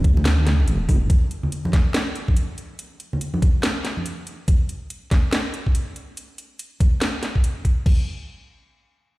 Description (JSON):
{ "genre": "deep dubstep", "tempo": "142 BPM", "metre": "4/4", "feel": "swing 61% on 16ths, half-time", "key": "D minor", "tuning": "A4 = 444 Hz", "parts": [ { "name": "granular cloud pad", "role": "sustained chords", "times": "0.0-1.2 s", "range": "none", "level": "barely audible", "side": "none", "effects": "none" }, { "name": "deep soft wobble bass", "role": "bass", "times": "0.0-1.1 s", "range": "F1 to D2", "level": "-18 LUFS", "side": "equal", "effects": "chorus" }, { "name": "electronic kick drum", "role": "drums", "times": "0.0-8.0 s", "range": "none", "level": "-17 LUFS", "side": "equal", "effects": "small room ambience" }, { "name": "garage drum kit", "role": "drums", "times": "0.0-8.0 s", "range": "crash cymbal, hi-hat, snare drum", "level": "-26 LUFS", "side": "equal", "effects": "small room ambience" }, { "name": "congas", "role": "percussion", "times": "0.2-4.0 s", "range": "none", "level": "-28 LUFS", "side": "equal", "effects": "dub echo" } ], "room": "light reverb", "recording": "played on a big sound system in a bare room, stone room reverb", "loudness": "-19 LUFS", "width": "side -20 dB against mid", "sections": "0.0-7.9 A section; 7.9-9.2 B section", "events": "none", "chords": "none" }